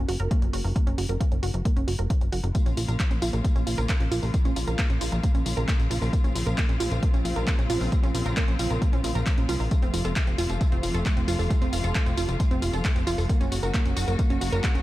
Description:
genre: uplifting trance.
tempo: 134 BPM.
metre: 4/4.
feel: straight.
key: Bb harmonic minor.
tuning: A4 = 436 Hz.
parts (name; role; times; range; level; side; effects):
plucky analog bass; bass; 0.0-14.8 s; F1 to C2; -28 LUFS; equal; sidechain pumping.
wide unison pluck; arpeggios; 0.1-14.8 s; A3 to Bb4; -31 LUFS; right 3 dB; sidechain pumping, dub echo.
punchy analog drum machine; drums; 0.1-14.8 s; handclaps, hi-hat, tambourine; -34 LUFS; left 1 dB; none.
electronic kick drum; drums; 0.3-14.7 s; none; -24 LUFS; equal; none.
rich studio string section; sustained chords; 2.6-14.8 s; C3 to Gb4; -33 LUFS; left 2 dB; sidechain pumping.
room: little or no reverb.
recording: dark, warm production.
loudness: -22 LUFS.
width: side -16 dB against mid.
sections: 0.0-14.8 A section.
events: filter sweep on synth arpeggio sound 0.0-14.8.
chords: 0.0 Gb; 2.5 Bbm; 9.7 F; 13.3 Gb.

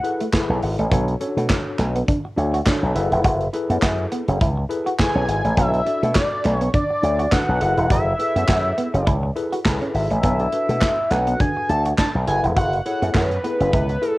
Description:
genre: early-eighties boogie funk.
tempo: 103 BPM.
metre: 4/4.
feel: swing 56% on 16ths.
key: B dorian.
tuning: A4 = 440 Hz.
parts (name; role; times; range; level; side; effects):
fat analog lead; melody; 0.0-0.6, 5.0-14.2 s; B4 to A5; -23 LUFS; equal; cassette tape, plate reverb.
tine electric piano; accompaniment; 0.0-14.2 s; C#4 to D5; -27 LUFS; left 2 dB; overdrive, fast stereo tremolo, cassette tape, plate reverb.
modern studio drum kit; drums; 0.0-14.2 s; handclaps, hi-hat, kick drum, snare drum; -22 LUFS; equal; cassette tape.
semi-hollow electric guitar; riff; 0.2-13.9 s; A3 to F#4; -26 LUFS; right 2 dB; lush chorus, cassette tape.
group handclap; percussion; 0.3-13.3 s; none; -31 LUFS; right 1 dB; none.
slap bass with an envelope filter; bass; 0.5-14.0 s; E1 to B2; -21 LUFS; equal; none.
room: light reverb.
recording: home recording on cassette.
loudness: -18 LUFS.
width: side -19 dB against mid.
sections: 0.0-10.2 A section; 10.2-14.2 B section.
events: none.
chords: 0.0 F#m11; 0.9 Bm9; 3.0 F#m11; 5.6 Bm9; 7.6 F#m11; 10.2 Bm7; 12.3 F#m11.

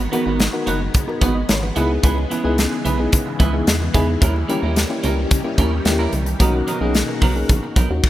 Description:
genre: early-eighties boogie funk.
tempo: 110 BPM.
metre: 4/4.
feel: straight.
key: G# minor.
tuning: A4 = 440 Hz.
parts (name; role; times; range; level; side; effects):
phased string machine; sustained chords; 0.0-8.0 s; B2 to F#4; -27 LUFS; equal; ensemble chorus, phaser.
clean electric guitar; riff; 0.0-7.9 s; F#3 to B4; -25 LUFS; right 4 dB; lush chorus.
rubbery square bass; bass; 0.0-8.0 s; F#1 to E2; -21 LUFS; equal; none.
congas; percussion; 0.0-7.9 s; none; -32 LUFS; right 1 dB; none.
FM electric piano with tremolo; accompaniment; 0.1-8.0 s; A#3 to D#5; -24 LUFS; left 3 dB; none.
modern studio drum kit; drums; 0.1-8.1 s; crash cymbal, hi-hat, kick drum, snare drum; -19 LUFS; equal; none.
room: light reverb, small room ambience.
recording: rough home demo mix.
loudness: -16 LUFS.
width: side -14 dB against mid.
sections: 0.0-8.1 A section.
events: none.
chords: 0.0 G#m7; 1.8 C#m7; 4.2 D#7b9; 6.4 Bmaj7.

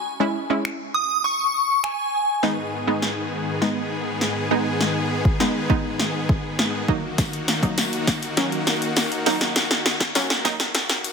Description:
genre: dance-pop.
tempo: 101 BPM.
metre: 4/4.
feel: straight.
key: G# minor.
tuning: A4 = 440 Hz.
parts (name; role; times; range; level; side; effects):
wide unison pluck; accompaniment; 0.2-11.1 s; F#3 to E4; -26 LUFS; moving between left 1 dB and right 5 dB; auto-pan, sidechain pumping.
punchy analog drum machine; drums; 0.7-11.1 s; finger snaps, hi-hat, kick drum, snare drum; -22 LUFS; equal; soft clipping on snare.
shimmering bell with halo; melody; 0.9-2.3 s; G#5 to D#6; -23 LUFS; left 1 dB; ensemble chorus, phaser, ping-pong delay.
supersaw chords; sustained chords; 2.4-11.1 s; D#2 to G#4; -26 LUFS; left 1 dB; sidechain pumping.
tambourine; percussion; 7.2-11.1 s; none; -35 LUFS; left 12 dB; none.
room: moderate plate reverb, RT60 2.8 s.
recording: dense, heavily limited modern master, high-pass filter.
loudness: -20 LUFS.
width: side -5 dB against mid.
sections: 0.0-2.4 A section; 2.4-11.1 B section.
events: build-up 2.4-11.1; drum fill 2.4-11.1; filter sweep 2.4-11.1.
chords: 0.0 C#m; 2.4 G#m; 6.9 D#m.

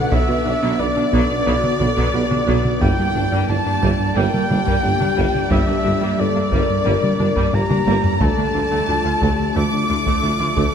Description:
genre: cinematic, hybrid orchestral and electronic film score.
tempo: 89 BPM.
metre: 4/4.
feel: straight.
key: unclear.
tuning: A4 = 436 Hz.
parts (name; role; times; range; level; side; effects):
clear symphonic violin section; melody; 0.0-10.7 s; D5; -34 LUFS; left 5 dB; none.
reedy FM lead; melody; 0.0-10.7 s; D5 to D6; -23 LUFS; right 1 dB; chorus, digital delay.
warm symphonic violin section; second line; 0.0-10.7 s; D5 to D6; -28 LUFS; left 4 dB; none.
dark French horn section; sustained chords; 0.0-10.7 s; D4 to B4; -26 LUFS; left 5 dB; none.
warbly tape-like pad; sustained chords; 0.0-10.7 s; D3 to D5; -26 LUFS; left 1 dB; chorus, built-in reverb.
smooth synth bass; riff; 0.0-10.7 s; D2 to B3; -24 LUFS; right 2 dB; none.
clear symphonic viola section; accompaniment; 0.1-10.7 s; F#3 to F4; -27 LUFS; equal; none.
analog pluck; arpeggios; 0.1-10.7 s; D3 to B4; -29 LUFS; right 3 dB; none.
rich studio double bass section; bass; 0.1-10.6 s; G1 to D2; -28 LUFS; right 2 dB; none.
rich symphonic cello section; bass; 0.1-10.6 s; D2 to B2; -29 LUFS; right 2 dB; none.
warm tuba; bass; 0.1-10.6 s; G1 to D2; -26 LUFS; right 4 dB; none.
solo taiko drums; drums; 0.1-10.7 s; none; -24 LUFS; left 1 dB; none.
room: wet concert hall reverb, RT60 2.5 s.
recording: none.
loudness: -16 LUFS.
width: side -7 dB against mid.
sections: 0.0-10.7 A section.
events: drum fill 7.5-8.2.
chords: 0.0 Bm; 2.8 Gm; 8.2 Dm.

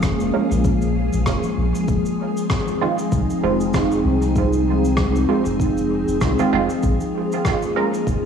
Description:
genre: ambient dub.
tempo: 97 BPM.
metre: 4/4.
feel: swing 56% on 16ths.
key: Bb minor.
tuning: A4 = 439 Hz.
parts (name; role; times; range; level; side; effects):
soft additive organ-like pad; sustained chords; 0.0-8.3 s; F3 to Ab4; -20 LUFS; left 1 dB; ensemble chorus, built-in reverb, cassette tape.
soft dub sub bass; bass; 0.0-8.2 s; F1 to C2; -22 LUFS; equal; none.
cabasa and rim click; drums; 0.0-8.2 s; none; -30 LUFS; equal; cassette tape, dub echo.
electronic kick drum; drums; 0.0-8.2 s; none; -24 LUFS; left 1 dB; cassette tape.
filtered dub chord stab; stabs; 0.3-7.9 s; Eb3 to Bb4; -24 LUFS; right 8 dB; phaser, ensemble chorus, cassette tape, dub echo.
room: moderate lush hall reverb, RT60 1.9 s, small room reverb.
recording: home recording on cassette, studio reverb.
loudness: -17 LUFS.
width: side -7 dB against mid.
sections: 0.0-8.3 A section.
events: none.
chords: 0.0 Bbm7; 1.9 Fm7; 6.8 Bbm7.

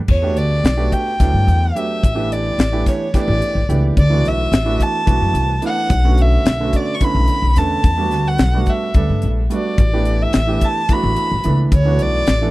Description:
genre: electric jazz fusion.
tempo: 217 BPM (eighths).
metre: 7/8.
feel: straight.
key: E dorian.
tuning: A4 = 440 Hz.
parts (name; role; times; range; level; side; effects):
upright bass; bass; 0.0-12.5 s; A1 to G2; -16 LUFS; equal; none.
dark violin; melody; 0.1-12.5 s; C#5 to C#6; -21 LUFS; equal; none.
crisp fusion drum kit; drums; 0.1-12.4 s; crash cymbal, hi-hat, kick drum, snare drum; -16 LUFS; left 1 dB; none.
clear concert grand piano; accompaniment; 0.2-12.5 s; D3 to A4; -22 LUFS; right 3 dB; none.
room: little or no reverb.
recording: dry, close 1970s-style studio recording.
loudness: -14 LUFS.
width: side -18 dB against mid.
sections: 0.1-12.5 A section.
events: none.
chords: 0.1 Em11; 2.0 A9sus4; 4.0 D6; 5.9 Bm9; 7.8 Em11; 9.8 A9sus4; 11.7 D6.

